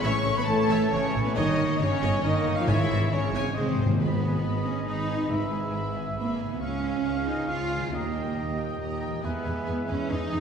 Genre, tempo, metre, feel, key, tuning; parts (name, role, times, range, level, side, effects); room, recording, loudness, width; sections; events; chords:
cinematic, heroic adventure film score; 137 BPM; 3/4; straight; C# minor, G# harmonic minor from 4.0 s; A4 = 440 Hz
rich symphonic violin section; melody; 0.0-10.4 s; B4 to C#6; -40 LUFS; left 3 dB
mellow concert flute; second line; 0.0-10.3 s; B4 to C#6; -37 LUFS; left 1 dB
warm symphonic violin section; second line; 0.0-10.4 s; E#4 to C#6; -39 LUFS; left 3 dB
rich studio viola section; accompaniment; 0.0-10.4 s; G#3 to G#5; -39 LUFS; right 1 dB
mellow French horn section; sustained chords; 0.0-10.4 s; B3 to D#5; -33 LUFS; left 2 dB
warm trombone section; sustained chords; 0.0-10.4 s; G#2 to A#3; -36 LUFS; right 2 dB
concert harp; arpeggios; 0.0-10.4 s; G2 to G#5; -36 LUFS; left 6 dB
mellow trumpet; stabs; 0.0-10.4 s; C#5 to E#5; -34 LUFS; right 1 dB
rich symphonic cello section; bass; 0.0-10.4 s; B2 to E#4; -30 LUFS; right 3 dB
warm studio double bass section; bass; 0.0-10.4 s; G1 to E2; -32 LUFS; right 2 dB
timpani; percussion; 2.7-5.9 s; G#2; -29 LUFS; equal
warm oboe; second line; 4.0-10.3 s; B4 to E#5; -38 LUFS; equal
wet scoring stage reverb, RT60 1.9 s; heard from further back in the room; -24 LUFS; side -7 dB against mid
0.0-4.0 A section; 4.0-10.4 B section
timpani fill 3.6-4.0
0.0 A; 1.4 D#7/G; 2.7 C#m/G#; 3.6 G#; 4.0 G#m; 5.3 E/G#; 6.6 C#; 7.9 D#; 9.2 E